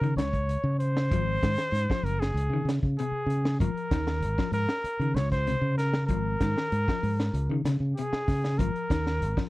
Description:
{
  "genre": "afrobeat",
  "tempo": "96 BPM",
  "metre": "4/4",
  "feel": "straight",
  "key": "Ab major",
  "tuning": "A4 = 439 Hz",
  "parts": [
    { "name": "breathy trumpet", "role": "melody", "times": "0.0-9.5 s", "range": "Ab4 to Db5", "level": "-31 LUFS", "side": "equal", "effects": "none" },
    { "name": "clean electric guitar", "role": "arpeggios", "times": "0.0-9.5 s", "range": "C3 to F3", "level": "-34 LUFS", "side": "left 6 dB", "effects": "none" },
    { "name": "fingered electric bass", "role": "bass", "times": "0.0-9.3 s", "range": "Gb1 to Db3", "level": "-27 LUFS", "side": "equal", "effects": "none" },
    { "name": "crunchy breakbeat drum kit", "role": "drums", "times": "0.0-9.5 s", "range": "hi-hat, kick drum, snare drum", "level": "-30 LUFS", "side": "equal", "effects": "none" }
  ],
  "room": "little or no reverb",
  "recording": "dry, close 1970s-style studio recording",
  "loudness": "-25 LUFS",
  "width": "side -18 dB against mid",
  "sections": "0.0-9.5 A section",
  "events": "none",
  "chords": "0.0 N.C.; 1.1 Ab7; 2.4 Db5; 3.6 Absus2; 4.9 N.C.; 6.1 Absus2; 7.3 Db5; 8.6 Absus2",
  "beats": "0.49 | 1.11 1.74 2.36 2.98 | 3.61 4.23 4.85 5.47 | 6.10 6.72 7.34 7.97 | 8.59 9.21"
}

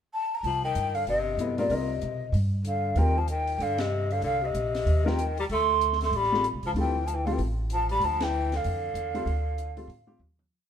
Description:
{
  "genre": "modal jazz",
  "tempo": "190 BPM",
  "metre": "4/4",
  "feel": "swing 61% on 8ths",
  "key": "C dorian",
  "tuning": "A4 = 440 Hz",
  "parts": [
    { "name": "breathy mellow jazz flute", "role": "melody", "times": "0.1-10.2 s", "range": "D5 to C6", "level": "-28 LUFS", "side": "equal", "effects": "none" },
    { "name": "upright bass", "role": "bass", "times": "0.4-10.5 s", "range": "G1 to A2", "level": "-29 LUFS", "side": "equal", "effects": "none" },
    { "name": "compact cocktail drum kit", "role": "drums", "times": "0.4-10.4 s", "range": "hi-hat, ride cymbal, snare drum, toms", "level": "-42 LUFS", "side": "left 1 dB", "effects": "none" },
    { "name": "breathy tenor saxophone", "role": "second line", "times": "0.5-10.2 s", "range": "Bb2 to A3", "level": "-33 LUFS", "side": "left 3 dB", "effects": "none" },
    { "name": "warm baby grand piano", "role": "accompaniment", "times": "1.4-10.2 s", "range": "F#3 to Bb4", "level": "-32 LUFS", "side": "left 3 dB", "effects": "none" }
  ],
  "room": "moderate stone room reverb, RT60 1.3 s",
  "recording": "band playing live in one room",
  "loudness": "-24 LUFS",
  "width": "side -9 dB against mid",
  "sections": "0.0-0.4 pickup bar; 0.4-10.5 A section",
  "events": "band accent 3.8, 8.2; fade-out 8.5-10.5; drum fill 10.2-10.5",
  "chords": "0.4 Cm11; 5.5 Dm11",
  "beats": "0.12 | 0.44 0.75 1.07 1.39 | 1.70 2.02 2.33 2.65 | 2.97 3.28 3.60 3.92 | 4.23 4.55 4.87 5.18 | 5.50 5.81 6.13 6.44 | 6.75 7.07 7.38 7.70 | 8.01 8.32 8.63 8.95 | 9.26 9.57 9.88 10.19"
}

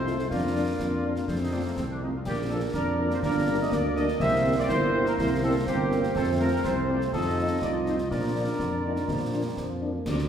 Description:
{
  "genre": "military-style march for wind band",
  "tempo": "123 BPM",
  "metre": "2/4",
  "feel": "straight",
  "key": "Bb major",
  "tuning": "A4 = 441 Hz",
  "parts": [
    { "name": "dark trumpet section", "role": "melody", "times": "0.0-10.2 s", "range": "Bb3 to E5", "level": "-31 LUFS", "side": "equal", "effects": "none" },
    { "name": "warm euphonium", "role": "second line", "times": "0.0-10.2 s", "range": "Bb3 to F4", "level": "-32 LUFS", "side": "right 2 dB", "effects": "none" },
    { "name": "warm woodwind section", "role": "second line", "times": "0.0-10.3 s", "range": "F4 to Eb5", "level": "-36 LUFS", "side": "left 2 dB", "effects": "none" },
    { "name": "warm trombone section", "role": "sustained chords", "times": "0.0-10.1 s", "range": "D3 to Eb4", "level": "-34 LUFS", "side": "right 1 dB", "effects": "none" },
    { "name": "dark tuba", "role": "bass", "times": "0.0-10.3 s", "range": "G1 to Bb2", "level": "-29 LUFS", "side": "right 1 dB", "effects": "none" },
    { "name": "dark French horn section", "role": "accompaniment", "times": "0.1-9.9 s", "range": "F3 to F4", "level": "-35 LUFS", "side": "left 3 dB", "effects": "none" },
    { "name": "concert snare drum, concert bass drum and clash cymbals", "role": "drums", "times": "0.1-10.3 s", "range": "none", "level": "-34 LUFS", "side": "left 1 dB", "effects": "none" }
  ],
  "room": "wet scoring stage reverb, RT60 1.8 s",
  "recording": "heard from further back in the room",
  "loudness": "-24 LUFS",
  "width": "side -8 dB against mid",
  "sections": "0.0-10.1 A section",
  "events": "none",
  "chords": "0.3 Bb/F; 1.3 F; 2.3 Bb; 3.2 Gm; 4.2 C7; 6.2 F; 7.1 F7; 8.1 Bb",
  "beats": "| 0.31 0.79 | 1.28 1.77 | 2.26 2.74 | 3.23 3.72 | 4.21 4.69 | 5.18 5.67 | 6.16 6.64 | 7.13 7.62 | 8.11 8.59 | 9.08 9.57 | 10.05"
}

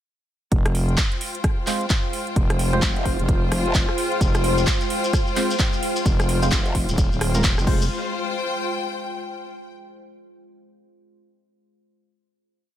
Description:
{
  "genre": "bass house",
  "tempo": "130 BPM",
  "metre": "4/4",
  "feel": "swing 60% on 16ths",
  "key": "F minor",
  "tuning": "A4 = 440 Hz",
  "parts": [
    { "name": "deep dark ambient pad", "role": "sustained chords", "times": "1.4-7.9 s", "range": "Ab3 to C5", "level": "-30 LUFS", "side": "equal", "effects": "chorus, built-in reverb, sidechain pumping" },
    { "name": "growling FM bass", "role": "bass", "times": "0.5-7.9 s", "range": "Eb1 to F1", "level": "-22 LUFS", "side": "equal", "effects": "overdrive, sidechain pumping" },
    { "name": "electronic kick drum", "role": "drums", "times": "0.5-7.8 s", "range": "none", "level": "-22 LUFS", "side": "equal", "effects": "none" },
    { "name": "house drum kit", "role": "drums", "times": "0.5-7.8 s", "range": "crash cymbal, handclaps, hi-hat, rim click", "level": "-27 LUFS", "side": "equal", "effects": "none" },
    { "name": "clear symphonic string section", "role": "texture", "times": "0.5-9.7 s", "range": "F4 to G5", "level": "-28 LUFS", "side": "left 2 dB", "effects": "sidechain pumping" },
    { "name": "percussive organ stab", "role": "stabs", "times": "1.7-7.9 s", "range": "Ab3 to C5", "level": "-28 LUFS", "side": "right 1 dB", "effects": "chorus, phaser, sidechain pumping, ping-pong delay" },
    { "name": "growl bass", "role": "bass", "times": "2.8-6.9 s", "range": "F1", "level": "-25 LUFS", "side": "equal", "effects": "chorus, tube saturation, sidechain pumping" },
    { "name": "shekere", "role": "percussion", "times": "4.2-7.9 s", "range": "none", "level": "-33 LUFS", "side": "left 2 dB", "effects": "none" }
  ],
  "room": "light reverb",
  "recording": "none",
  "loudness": "-19 LUFS",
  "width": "side -11 dB against mid",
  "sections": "0.5-7.9 drop; 7.9-9.7 final note",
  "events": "drop 0.5-7.9",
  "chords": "0.5 Fm; 7.9 F5",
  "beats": "| 0.52 0.98 1.44 1.90 | 2.36 2.83 3.29 3.75 | 4.21 4.67 5.13 5.59 | 6.05 6.52 6.98 7.44 | 7.90 8.36 8.82 9.29"
}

